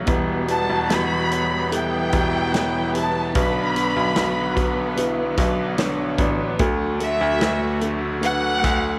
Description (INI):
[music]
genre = pop ballad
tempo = 74 BPM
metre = 4/4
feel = straight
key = B minor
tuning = A4 = 441 Hz
[part]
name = felt-muted upright piano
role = accompaniment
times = 0.0-9.0 s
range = B2 to D5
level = -29 LUFS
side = equal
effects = none
[part]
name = bright studio string section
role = sustained chords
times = 0.0-9.0 s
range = D3 to B3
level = -30 LUFS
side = equal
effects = none
[part]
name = bright grand piano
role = bass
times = 0.0-9.0 s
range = E1 to D2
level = -27 LUFS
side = equal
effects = none
[part]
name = mellow French horn section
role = second line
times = 0.1-9.0 s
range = D4 to F#4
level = -33 LUFS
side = equal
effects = none
[part]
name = natural country drum kit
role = drums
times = 0.1-8.8 s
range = hi-hat, kick drum, snare drum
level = -28 LUFS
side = equal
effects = none
[part]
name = warm chamber violin section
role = melody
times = 0.5-9.0 s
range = E5 to B5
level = -26 LUFS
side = equal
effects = none
[sound]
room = light reverb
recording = none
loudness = -21 LUFS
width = mono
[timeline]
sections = 0.0-9.0 A section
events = none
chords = 0.1 Em; 3.4 Bm; 6.6 D